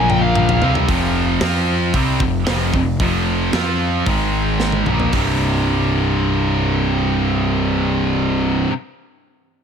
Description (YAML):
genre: heavy metal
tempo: 113 BPM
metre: 4/4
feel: straight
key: C minor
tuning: A4 = 441 Hz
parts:
  - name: bluesy overdriven lead guitar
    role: melody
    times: 0.0-0.7 s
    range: F5 to G5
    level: -22 LUFS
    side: equal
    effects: distortion, ping-pong delay
  - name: scooped high-gain guitar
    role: riff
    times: 0.0-8.7 s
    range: C2 to F4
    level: -21 LUFS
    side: left 13 dB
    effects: distortion
  - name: tight distorted guitar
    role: riff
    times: 0.0-8.7 s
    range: C2 to F4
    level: -20 LUFS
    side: right 12 dB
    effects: distortion
  - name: fuzz picked electric bass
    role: bass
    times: 0.0-8.6 s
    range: C1 to F2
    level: -21 LUFS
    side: left 1 dB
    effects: overdrive
  - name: tight metal drum kit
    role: drums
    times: 0.1-5.3 s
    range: hi-hat, kick drum, snare drum, toms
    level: -22 LUFS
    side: left 1 dB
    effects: none
room: small room ambience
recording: none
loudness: -15 LUFS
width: side -7 dB against mid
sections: 0.9-5.1 A section; 5.1-9.4 B section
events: drum fill 0.0-0.9, 4.6-5.1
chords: 0.0 Bb5; 0.6 Csus4; 0.9 F5; 4.1 Ab5; 4.9 Bb5; 5.1 C5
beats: 0.36 | 0.89 1.42 1.94 2.47 | 3.00 3.54 4.07 4.60 | 5.13 5.67 6.20 6.73 | 7.27 7.80 8.34